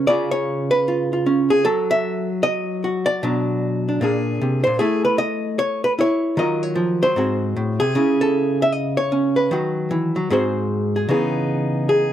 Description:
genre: solo jazz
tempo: 152 BPM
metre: 4/4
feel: swing 64% on 8ths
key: C# minor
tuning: A4 = 439 Hz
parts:
  - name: archtop guitar, miked and amplified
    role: solo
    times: 0.0-12.1 s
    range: G#2 to E5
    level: -18 LUFS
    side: equal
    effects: none
room: little or no reverb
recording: dry, close 1970s-style studio recording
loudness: -18 LUFS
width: side -11 dB against mid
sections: 0.0-11.1 A section; 11.1-12.1 B section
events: hollow-body jazz guitar solo 11.1-12.1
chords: 0.1 C#7; 1.6 N.C.; 3.2 Bm; 4.0 A#7; 4.8 A; 6.4 D#m9; 7.2 G#7; 7.9 C#m; 9.5 Badd11/D#; 10.3 G#7; 11.1 C#m9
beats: | 0.07 0.46 0.85 1.25 | 1.64 2.03 2.43 2.82 | 3.21 3.61 4.00 4.39 | 4.79 5.18 5.58 5.97 | 6.36 6.76 7.15 7.54 | 7.94 8.33 8.73 9.12 | 9.52 9.91 10.30 10.70 | 11.09 11.48 11.88

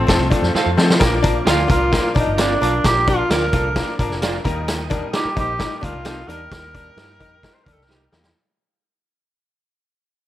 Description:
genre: uptempo 1960s-style soul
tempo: 131 BPM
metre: 4/4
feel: straight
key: Bb major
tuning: A4 = 441 Hz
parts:
  - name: breathy tenor saxophone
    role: melody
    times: 0.0-7.9 s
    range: C4 to C5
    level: -22 LUFS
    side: right 1 dB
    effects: none
  - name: bright grand piano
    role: accompaniment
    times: 0.0-8.3 s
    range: F3 to C5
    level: -24 LUFS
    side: left 2 dB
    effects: none
  - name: tonewheel organ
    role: sustained chords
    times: 0.0-8.3 s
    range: A4 to F6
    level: -32 LUFS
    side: right 1 dB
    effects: chorus vibrato, slow rotary speaker
  - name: vintage muted fingered electric bass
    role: bass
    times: 0.0-8.3 s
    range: F1 to F3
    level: -23 LUFS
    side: equal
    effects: none
  - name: archtop guitar, miked and amplified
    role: riff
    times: 0.1-8.3 s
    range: Bb3 to F4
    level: -27 LUFS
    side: left 6 dB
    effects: none
  - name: vintage drum kit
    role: drums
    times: 0.1-8.3 s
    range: hi-hat, kick drum, snare drum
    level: -20 LUFS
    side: equal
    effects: none
  - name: clean electric guitar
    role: stabs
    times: 0.5-8.0 s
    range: Eb4 to F5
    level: -26 LUFS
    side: right 4 dB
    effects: none
  - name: clear horn section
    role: second line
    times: 7.0-7.5 s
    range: G3 to Bb4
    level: -59 LUFS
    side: right 2 dB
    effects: none
room: light reverb, studio reverb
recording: none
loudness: -16 LUFS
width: side -13 dB against mid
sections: 0.0-1.0 A section; 1.0-8.4 B section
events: drum fill 0.5-1.0, 7.9-8.4; fade-out 1.0-8.4; band accent 6.5-8.4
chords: 0.0 F; 1.0 Bb; 4.4 Eb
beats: 0.09 0.55 | 1.01 1.47 1.92 2.38 | 2.84 3.30 3.76 4.22 | 4.68 5.14 5.59 6.05 | 6.51 6.97 7.43 7.89

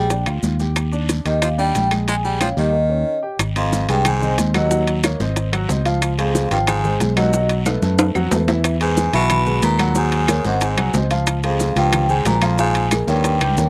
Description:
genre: Afro-Cuban jazz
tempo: 183 BPM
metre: 4/4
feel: straight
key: Eb major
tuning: A4 = 439 Hz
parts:
  - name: vibraphone with soft mallets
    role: melody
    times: 0.0-13.7 s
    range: Eb5 to B5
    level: -25 LUFS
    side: equal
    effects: slapback echo
  - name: growling baritone saxophone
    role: second line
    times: 0.0-13.7 s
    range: Eb2 to Ab3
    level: -28 LUFS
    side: equal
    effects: slapback echo
  - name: warm upright piano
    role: accompaniment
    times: 0.0-13.7 s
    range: Fb3 to Ab5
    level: -26 LUFS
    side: equal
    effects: slapback echo
  - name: fingered electric bass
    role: bass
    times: 0.0-13.7 s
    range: Ab1 to F#2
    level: -22 LUFS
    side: equal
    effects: none
  - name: bongos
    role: percussion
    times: 0.1-13.7 s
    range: none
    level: -28 LUFS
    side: equal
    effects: none
  - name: congas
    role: percussion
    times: 0.1-13.7 s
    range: none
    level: -30 LUFS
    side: equal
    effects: none
  - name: guiro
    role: percussion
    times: 0.1-13.7 s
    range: none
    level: -38 LUFS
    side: equal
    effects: none
  - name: maracas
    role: percussion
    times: 0.1-13.7 s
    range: none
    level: -35 LUFS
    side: equal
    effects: none
  - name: timbales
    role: percussion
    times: 0.1-13.6 s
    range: none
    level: -25 LUFS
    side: equal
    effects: none
  - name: claves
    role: percussion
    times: 0.3-13.6 s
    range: none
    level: -31 LUFS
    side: equal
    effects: none
room: little or no reverb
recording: recorded outdoors, with no room sound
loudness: -18 LUFS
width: mono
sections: 0.0-3.4 A section; 3.4-13.7 B section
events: drum fill 7.7-8.6, 13.1-13.7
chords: 0.1 Bb; 0.8 Ebmaj7; 2.1 Bbm7; 2.7 Eb7; 3.4 Ab; 4.7 Ebm7; 5.4 Ab7; 6.0 Dbmaj7; 7.3 B5; 8.6 Emaj7; 10.0 Ebm7; 10.6 Ab7; 11.3 Dbmaj7; 12.6 Bbm7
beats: 0.10 0.43 | 0.76 1.09 1.42 1.75 | 2.08 2.41 2.74 3.06 | 3.39 3.72 4.05 4.38 | 4.71 5.04 5.36 5.69 | 6.02 6.35 6.68 7.00 | 7.33 7.66 7.99 8.32 | 8.64 8.97 9.30 9.63 | 9.96 10.29 10.61 10.94 | 11.27 11.60 11.93 12.26 | 12.59 12.91 13.24 13.57

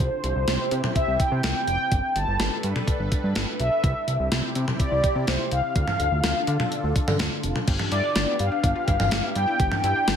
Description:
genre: synth-pop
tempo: 125 BPM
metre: 4/4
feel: straight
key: unclear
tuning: A4 = 440 Hz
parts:
  - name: mellow synth brass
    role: melody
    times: 0.0-10.2 s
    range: C5 to A5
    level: -25 LUFS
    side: equal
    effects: chorus
  - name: lush unison pad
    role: sustained chords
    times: 0.0-10.2 s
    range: C3 to B4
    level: -32 LUFS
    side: left 1 dB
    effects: chorus, phaser
  - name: fat analog bass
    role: bass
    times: 0.0-10.2 s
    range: F1 to D3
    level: -26 LUFS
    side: equal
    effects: none
  - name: gated 80s digital drum machine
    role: drums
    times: 0.0-10.2 s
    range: crash cymbal, hi-hat, kick drum, snare drum, toms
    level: -25 LUFS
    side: equal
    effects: gated reverb, gated reverb snare
  - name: analog pluck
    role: arpeggios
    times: 7.7-10.2 s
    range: B3 to G4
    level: -34 LUFS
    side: left 4 dB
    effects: chorus, ping-pong delay
room: light reverb, digital ambience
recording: none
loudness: -21 LUFS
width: side -8 dB against mid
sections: 0.0-7.7 A section; 7.7-10.2 B section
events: none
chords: 0.0 C; 1.9 Gadd9; 3.8 C; 5.8 Dm; 7.7 G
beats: | 0.00 0.48 0.96 1.44 | 1.92 2.40 2.88 3.36 | 3.84 4.32 4.80 5.28 | 5.76 6.24 6.72 7.20 | 7.68 8.16 8.64 9.12 | 9.60 10.08

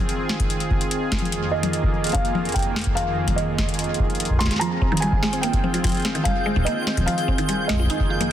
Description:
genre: IDM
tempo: 146 BPM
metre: 4/4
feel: straight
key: F minor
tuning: A4 = 441 Hz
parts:
  - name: warm analog pad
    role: sustained chords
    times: 0.0-8.3 s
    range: F2 to Ab4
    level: -26 LUFS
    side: right 1 dB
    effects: chorus, tremolo
  - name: booming analog drum machine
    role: drums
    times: 0.1-8.3 s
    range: hi-hat, snare drum, toms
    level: -27 LUFS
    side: left 3 dB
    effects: digital delay
  - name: electronic kick drum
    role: drums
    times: 0.4-8.1 s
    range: none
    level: -24 LUFS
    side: equal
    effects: none
  - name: felt-muted upright piano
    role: melody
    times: 1.5-8.3 s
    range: Eb5 to C6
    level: -27 LUFS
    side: right 1 dB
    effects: digital delay
  - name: mallet-like synth pluck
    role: arpeggios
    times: 4.6-8.3 s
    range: Eb3 to F4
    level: -25 LUFS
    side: right 2 dB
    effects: analog chorus, cassette tape, tape echo
  - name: twinkling granular texture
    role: texture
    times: 5.3-8.3 s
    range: G6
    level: -31 LUFS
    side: equal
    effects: built-in reverb
room: moderate echo chamber reverb, RT60 2.1 s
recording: dense, heavily limited modern master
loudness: -20 LUFS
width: side -11 dB against mid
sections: 0.0-8.3 A section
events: none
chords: 0.0 Fm7; 1.3 Bb7sus4/F; 4.6 Fm7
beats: 0.09 0.50 0.91 | 1.32 1.73 2.15 2.56 | 2.97 3.38 3.79 4.20 | 4.61 5.02 5.43 5.84 | 6.25 6.67 7.08 7.49 | 7.90 8.31

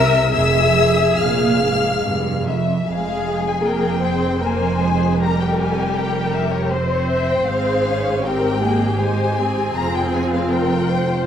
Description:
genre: classical, slow romantic movement for string orchestra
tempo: 78 BPM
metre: 3/4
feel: rubato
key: F minor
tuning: A4 = 440 Hz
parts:
  - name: warm studio violin section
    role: melody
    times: 0.0-11.3 s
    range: C5 to F6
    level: -24 LUFS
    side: left 6 dB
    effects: none
  - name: rich studio violin section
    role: second line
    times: 0.0-11.3 s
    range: G4 to F5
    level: -23 LUFS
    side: left 3 dB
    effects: none
  - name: rich studio viola section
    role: accompaniment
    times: 0.0-11.3 s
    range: G3 to C5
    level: -22 LUFS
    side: equal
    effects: none
  - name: rich studio cello section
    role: bass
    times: 0.0-11.3 s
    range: F2 to C3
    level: -23 LUFS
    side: right 2 dB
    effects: none
  - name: warm studio double bass section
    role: bass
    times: 0.0-11.3 s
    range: F1 to C2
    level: -24 LUFS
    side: right 3 dB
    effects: none
room: moderate scoring stage reverb, RT60 1.5 s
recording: none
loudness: -16 LUFS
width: side -9 dB against mid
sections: 0.0-2.9 A section; 2.9-11.3 B section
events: none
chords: 0.3 Fm; 5.2 C5/F; 7.5 Fm/Ab; 9.8 Fm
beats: | 0.34 1.20 2.05 | 2.89 3.65 4.43 | 5.21 5.96 6.72 | 7.48 8.26 9.02 | 9.77 10.53

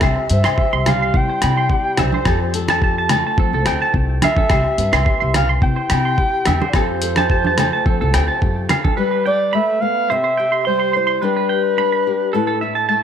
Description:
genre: highlife guitar band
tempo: 107 BPM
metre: 4/4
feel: straight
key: C major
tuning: A4 = 437 Hz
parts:
  - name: dark clarinet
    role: melody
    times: 0.0-12.9 s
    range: B4 to G5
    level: -20 LUFS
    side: equal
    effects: none
  - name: flamenco guitar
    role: accompaniment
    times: 0.0-13.0 s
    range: A2 to C5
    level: -25 LUFS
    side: left 6 dB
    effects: none
  - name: twangy electric guitar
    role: arpeggios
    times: 0.0-13.0 s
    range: A4 to C6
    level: -22 LUFS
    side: right 7 dB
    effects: spring reverb
  - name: upright bass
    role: bass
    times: 0.0-8.7 s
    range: C2 to F3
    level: -20 LUFS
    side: equal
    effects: none
  - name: boom bap sampler-style drum kit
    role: drums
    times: 0.0-9.0 s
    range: hi-hat, kick drum, rim click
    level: -20 LUFS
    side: equal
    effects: none
  - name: agogo bells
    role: percussion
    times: 0.0-8.8 s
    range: none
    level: -26 LUFS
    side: left 17 dB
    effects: none
  - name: congas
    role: percussion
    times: 0.9-9.0 s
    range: none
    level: -23 LUFS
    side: right 5 dB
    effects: none
room: light reverb, studio reverb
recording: none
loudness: -15 LUFS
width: side -8 dB against mid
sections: 0.0-9.0 A section; 9.0-13.0 B section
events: none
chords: 0.0 C; 2.3 Fadd9; 4.5 Cmaj7; 6.7 Fadd9; 9.0 G; 10.1 C; 11.2 G; 12.3 A5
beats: | 0.02 0.58 1.14 1.71 | 2.27 2.83 3.39 3.95 | 4.51 5.07 5.63 6.19 | 6.75 7.31 7.87 8.43 | 8.98 9.54 10.10 10.66 | 11.22 11.78 12.33 12.89

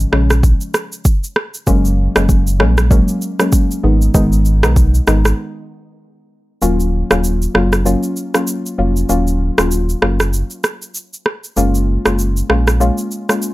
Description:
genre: afrobeats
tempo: 97 BPM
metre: 4/4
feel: swing 58% on 16ths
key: Eb minor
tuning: A4 = 442 Hz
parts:
  - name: sub bass with octave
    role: bass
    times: 0.0-12.9 s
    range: Eb1 to Cb2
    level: -15 LUFS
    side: equal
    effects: none
  - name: afro-pop drum kit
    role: drums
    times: 0.0-13.5 s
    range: kick drum, rim click, shaker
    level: -16 LUFS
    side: equal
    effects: overdrive
  - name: soft round pluck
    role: accompaniment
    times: 0.1-13.5 s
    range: Db3 to F4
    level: -18 LUFS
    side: left 1 dB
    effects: chorus, plate reverb
room: little or no reverb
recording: none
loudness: -13 LUFS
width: side -18 dB against mid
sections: 0.0-6.6 A section; 6.6-13.5 B section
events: break 5.4-6.6; kick muted 6.6-13.5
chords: 0.0 Db; 1.7 Gbadd9; 3.8 Abm; 6.6 Ebm7; 11.6 Gbmaj7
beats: 0.43 1.05 | 1.67 2.29 2.91 3.53 | 4.14 4.76 5.38 6.00 | 6.62 7.24 7.86 8.47 | 9.09 9.71 10.33 10.95 | 11.57 12.19 12.80 13.42

